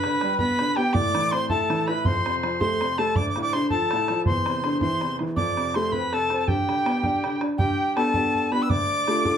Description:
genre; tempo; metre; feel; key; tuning
celtic folk, Celtic jig; 108 BPM (dotted quarters); 6/8; straight; G mixolydian; A4 = 438 Hz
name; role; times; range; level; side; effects
bright reedy mid whistle; melody; 0.0-9.4 s; G5 to E6; -26 LUFS; left 1 dB; none
accordion; second line; 0.0-9.4 s; G4 to D5; -28 LUFS; equal; none
clear upright piano; accompaniment; 0.0-9.4 s; D2 to G4; -26 LUFS; equal; none
bodhran; percussion; 0.0-9.3 s; none; -29 LUFS; right 1 dB; none
room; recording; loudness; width
wet studio reverb, RT60 0.5 s; band playing live in one room; -21 LUFS; side -8 dB against mid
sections
0.0-7.6 A section; 7.6-9.4 B section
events
none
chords
0.0 G; 0.9 Am; 2.0 F; 3.2 Dm; 4.3 Cadd9/E; 5.4 F; 6.5 G; 8.7 Dm

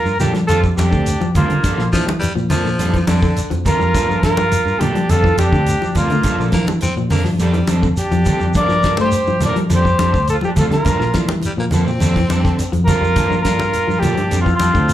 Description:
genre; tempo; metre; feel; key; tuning
afrobeat; 104 BPM; 4/4; straight; G dorian; A4 = 440 Hz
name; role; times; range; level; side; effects
mellow cor anglais; melody; 0.0-14.9 s; F4 to D5; -18 LUFS; equal; slapback echo
clear trumpet; second line; 0.0-14.9 s; Bb3 to Bb4; -26 LUFS; right 4 dB; slapback echo
fingered electric bass; bass; 0.1-14.9 s; D2 to G3; -18 LUFS; equal; none
shekere; percussion; 0.1-14.9 s; none; -27 LUFS; equal; none
electric guitar at the edge of break-up; stabs; 0.2-14.9 s; F3 to A4; -24 LUFS; right 5 dB; ensemble chorus, slapback echo
damped 70s drum kit; drums; 0.2-14.9 s; hi-hat, kick drum, snare drum; -21 LUFS; equal; none
congas; percussion; 0.2-14.7 s; none; -22 LUFS; equal; none
electric guitar at the edge of break-up; arpeggios; 0.3-14.9 s; D3 to A3; -25 LUFS; left 6 dB; slapback echo
growling baritone saxophone; second line; 1.9-7.8, 11.5-12.7 s; D3 to C4; -24 LUFS; left 3 dB; slapback echo
room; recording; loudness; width
light reverb; live gig heard through the venue's PA, club reverb; -14 LUFS; side -12 dB against mid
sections
0.0-14.9 A section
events
none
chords
0.5 F69; 1.6 Gm9; 2.8 F69; 3.9 Gm9; 5.1 F69; 6.2 Gm9; 7.4 F69; 8.5 Gm9; 9.7 F69; 10.9 Gm9; 12.0 F69; 13.2 Gm9; 14.3 F69

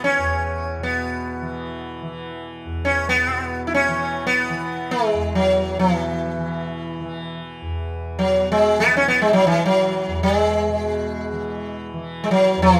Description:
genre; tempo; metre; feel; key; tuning
indian classical, Hindustani; free time; none; none; E raga bhupali; A4 = 440 Hz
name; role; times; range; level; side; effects
sitar; melody; 0.0-12.8 s; E3 to E4; -21 LUFS; equal; none
tanpura; drone; 0.0-12.8 s; E2 to E3; -31 LUFS; equal; none
room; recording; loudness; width
moderate recital hall reverb, RT60 1.4 s; none; -21 LUFS; mono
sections
0.0-12.8 A section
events
none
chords
none

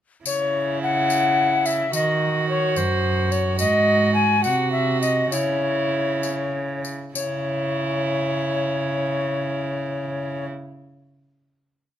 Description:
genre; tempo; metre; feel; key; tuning
classical, renaissance-style consort dance; 63-72 BPM (dotted quarters); 6/8; straight; C# harmonic minor; A4 = 441 Hz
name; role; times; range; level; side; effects
alto recorder; melody; 0.3-10.5 s; C5 to G#5; -22 LUFS; left 3 dB; none
rich violin; second line; 0.3-10.5 s; E4 to F#4; -27 LUFS; right 5 dB; none
rich cello; bass; 0.3-10.5 s; Gb2 to Eb3; -26 LUFS; right 2 dB; none
tambourine; percussion; 0.3-7.4 s; none; -31 LUFS; left 6 dB; none
room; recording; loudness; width
light reverb; close, detailed microphones; -20 LUFS; side -10 dB against mid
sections
0.3-7.2 A section; 7.2-10.9 final chord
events
slowing down 2.8-7.2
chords
0.3 C#m; 1.9 Cdim; 3.6 G#7; 5.3 C#m

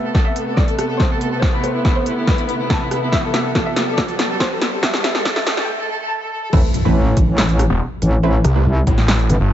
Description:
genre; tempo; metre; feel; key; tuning
heavy wobble dubstep; 141 BPM; 4/4; half-time; A minor; A4 = 440 Hz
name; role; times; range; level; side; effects
rich chamber violin section; melody; 0.0-6.5 s; E4 to A5; -23 LUFS; left 1 dB; tape echo
rich studio string section; sustained chords; 0.0-5.7 s; C3 to B3; -24 LUFS; right 1 dB; stereo widening, sidechain pumping
riser and impact; sound effects; 2.2-8.2 s; none; -26 LUFS; equal; none
big-room dance drum kit; drums; 0.1-9.4 s; crash cymbal, handclaps, hi-hat, rim click, snare drum; -21 LUFS; equal; none
electronic kick drum; drums; 0.1-9.0 s; none; -17 LUFS; equal; none
orchestra-hit-like synth stab; stabs; 6.5-8.6 s; A3 to B4; -24 LUFS; right 2 dB; built-in reverb, cassette tape, tape echo
metallic wobble bass; bass; 6.5-9.4 s; G1 to C2; -15 LUFS; equal; chorus, overdrive
snarling distorted saw bass; bass; 7.7-9.5 s; E1 to C2; -15 LUFS; equal; distortion, overdrive
room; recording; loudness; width
light reverb, digital ambience; high-pass filter, nothing above 7.8 kHz; -15 LUFS; side -11 dB against mid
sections
0.0-6.5 A section; 6.5-9.5 B section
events
build-up 0.0-6.5; drum fill 0.0-5.7; filter sweep 0.0-6.5; riser 2.2-5.7; break 5.7-6.5; drop 6.5-9.5; impact 6.5-8.2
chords
0.0 Amadd9

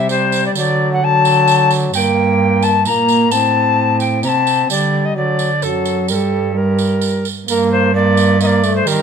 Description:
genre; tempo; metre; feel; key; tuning
classical, renaissance-style consort dance; 130 BPM; 3/4; straight; G minor; A4 = 440 Hz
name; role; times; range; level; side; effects
alto recorder; melody; 0.0-9.0 s; A4 to Bb5; -16 LUFS; left 3 dB; none
bright trombone; accompaniment; 0.0-9.0 s; F#3 to C4; -19 LUFS; right 1 dB; none
dark cello; bass; 0.0-9.0 s; F#2 to Eb3; -18 LUFS; right 2 dB; none
tambourine; percussion; 0.1-9.0 s; none; -24 LUFS; right 9 dB; none
room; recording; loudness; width
moderate stone room reverb, RT60 1.0 s; none; -12 LUFS; side -7 dB against mid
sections
0.0-7.5 A section; 7.5-9.0 B section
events
none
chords
0.0 C5; 0.6 D; 1.9 Gm; 3.3 Am; 4.7 Dsus4; 5.2 D; 6.1 Gm

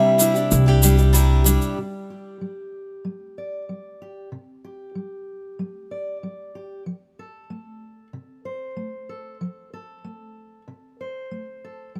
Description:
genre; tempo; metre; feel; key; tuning
indie folk with a building arrangement; 94 BPM; 4/4; straight; C major; A4 = 440 Hz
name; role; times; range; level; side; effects
warbly nostalgic lead; melody; 0.0-0.5 s; E5; -21 LUFS; equal; chorus, tremolo, slapback echo
fingerpicked steel-string acoustic guitar; accompaniment; 0.0-12.0 s; C3 to D5; -31 LUFS; equal; none
picked steel-string acoustic guitar; accompaniment; 0.0-1.8 s; C3 to G4; -28 LUFS; equal; none
egg shaker; percussion; 0.2-1.7 s; none; -24 LUFS; equal; none
upright bass; bass; 0.5-1.6 s; C2; -18 LUFS; equal; none
room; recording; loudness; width
small room ambience; rough home demo mix; -19 LUFS; mono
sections
0.0-1.8 A section; 1.8-12.0 B section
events
none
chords
0.0 Cadd9; 1.8 Csus2; 6.9 F

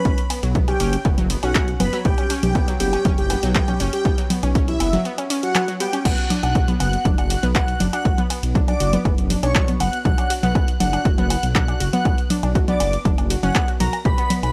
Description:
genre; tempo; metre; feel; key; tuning
melodic techno; 120 BPM; 4/4; straight; B minor; A4 = 440 Hz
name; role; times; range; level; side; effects
soft octave-layered synth lead; melody; 0.0-14.5 s; E4 to B5; -28 LUFS; equal; chorus, sidechain pumping, tape echo
soft supersaw; second line; 0.0-14.5 s; E5 to B6; -33 LUFS; equal; sidechain pumping, analog delay
unison pluck; arpeggios; 0.1-14.4 s; F#3 to G4; -31 LUFS; equal; sidechain pumping, analog delay
swelling detuned saw bass; bass; 0.1-14.5 s; F#1 to B1; -26 LUFS; equal; sidechain pumping
electronic kick drum; drums; 0.1-14.2 s; none; -23 LUFS; equal; none
punchy analog drum machine; drums; 0.1-14.5 s; congas, crash cymbal, handclaps, hi-hat, ride cymbal, woodblock; -26 LUFS; equal; none
room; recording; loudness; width
little or no reverb; dry, gritty hardware recording, transformer saturation; -20 LUFS; mono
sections
0.0-6.1 A section; 6.1-14.5 A section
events
drop 0.0-6.1, 6.1-14.5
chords
0.0 Em69/F# (rootless); 6.1 Bm

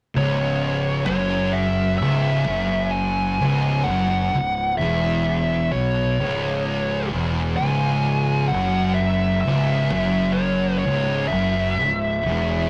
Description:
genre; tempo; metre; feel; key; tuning
metal; 64 BPM; 4/4; straight; C# minor; A4 = 441 Hz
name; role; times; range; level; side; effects
thick fuzz guitar; riff; 0.1-12.7 s; C#2 to B2; -26 LUFS; equal; distortion
fuzz lead guitar; melody; 0.2-12.7 s; C#5 to G#5; -26 LUFS; equal; wah, distortion
thick fuzz guitar; riff; 0.2-12.7 s; C#2 to B2; -28 LUFS; equal; distortion
fuzz fingered electric bass; bass; 0.2-12.7 s; C#1 to B1; -29 LUFS; equal; overdrive, tube saturation
room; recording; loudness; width
moderate stone room reverb, RT60 1.1 s; rough rehearsal-room recording; -21 LUFS; mono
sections
0.2-12.7 A section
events
none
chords
0.2 C#m

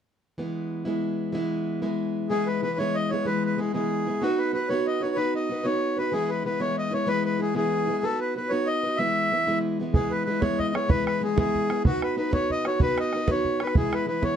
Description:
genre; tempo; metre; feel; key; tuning
celtic folk, Celtic jig; 126 BPM (dotted quarters); 6/8; straight; E major; A4 = 440 Hz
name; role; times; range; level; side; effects
picked plugged-in steel-string acoustic guitar; accompaniment; 0.4-14.4 s; E3 to B4; -26 LUFS; equal; none
accordion; melody; 2.3-14.4 s; F#4 to E5; -26 LUFS; left 1 dB; none
bodhran; percussion; 9.9-14.3 s; none; -25 LUFS; right 2 dB; none
room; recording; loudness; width
moderate studio ambience, RT60 0.5 s; dark, warm production; -23 LUFS; side -8 dB against mid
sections
0.4-2.3 A section; 2.3-9.9 B section; 9.9-14.4 B section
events
none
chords
0.4 E; 4.2 B; 6.1 E; 8.0 B; 9.0 E; 11.8 B; 13.8 E

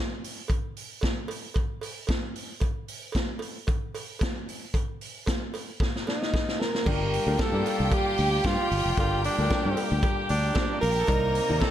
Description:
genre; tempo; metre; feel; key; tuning
disco; 113 BPM; 4/4; straight; G minor; A4 = 440 Hz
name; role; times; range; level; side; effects
vintage drum kit; drums; 0.2-11.7 s; crash cymbal, hi-hat, kick drum, snare drum; -29 LUFS; equal; gated reverb
cowbell; percussion; 0.5-11.7 s; none; -40 LUFS; right 4 dB; none
breathy tenor saxophone; melody; 6.1-11.7 s; D4 to Bb4; -28 LUFS; right 2 dB; none
clear studio string section; second line; 6.9-11.7 s; Bb3 to Bb5; -32 LUFS; equal; none
warm grand piano; accompaniment; 6.9-11.7 s; C3 to D5; -33 LUFS; left 4 dB; none
muted French horn section; sustained chords; 6.9-11.7 s; Bb2 to G4; -35 LUFS; right 1 dB; none
fingered electric bass; bass; 6.9-11.6 s; F1 to G2; -27 LUFS; equal; none
room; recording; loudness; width
light reverb, studio reverb; none; -25 LUFS; side -11 dB against mid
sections
0.0-6.9 A section; 6.9-11.7 B section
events
drum fill 5.8-6.9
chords
0.0 N.C.; 6.9 Gm9

